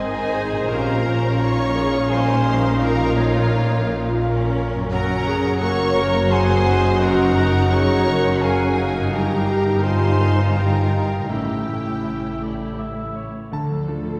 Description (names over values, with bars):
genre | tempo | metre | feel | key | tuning
cinematic | 85 BPM | 3/4 | rubato | unclear | A4 = 440 Hz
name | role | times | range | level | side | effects
rich studio violin section | melody | 0.0-14.2 s | D4 to Db6 | -32 LUFS | equal | none
dark clarinet | second line | 0.0-13.2 s | C4 to Eb4 | -30 LUFS | equal | none
rich studio violin section | second line | 0.0-12.8 s | F4 to Db5 | -31 LUFS | equal | none
silver concert flute | second line | 0.0-12.8 s | Db5 to Bb5 | -31 LUFS | equal | none
warm cor anglais | second line | 0.0-13.5 s | C#5 to Gb5 | -35 LUFS | equal | none
bright concert grand piano | accompaniment | 0.0-14.2 s | D2 to A5 | -30 LUFS | equal | none
rich studio viola section | accompaniment | 0.0-14.2 s | G3 to Db5 | -29 LUFS | equal | none
mellow French horn section | sustained chords | 0.0-13.1 s | G3 to Bb4 | -29 LUFS | equal | none
concert harp | arpeggios | 0.0-14.2 s | Gb2 to Bb4 | -33 LUFS | equal | none
rich studio double bass section | bass | 0.0-14.2 s | Gb1 to D2 | -27 LUFS | equal | none
warm studio cello section | bass | 0.0-14.2 s | D2 to Bb2 | -27 LUFS | equal | none
room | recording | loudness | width
wet concert hall reverb, RT60 2.2 s | heard from further back in the room | -20 LUFS | mono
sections
0.0-13.5 A section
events
none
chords
0.0 Ab; 0.7 Bbm; 4.9 Gb; 9.1 Ebadd9/G; 11.3 A7; 13.5 Dm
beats
| 0.69 1.40 2.11 | 2.81 3.51 4.21 | 4.92 5.62 6.31 | 7.01 7.71 8.42 | 9.12 9.83 10.56 | 11.29 12.04 12.78 | 13.52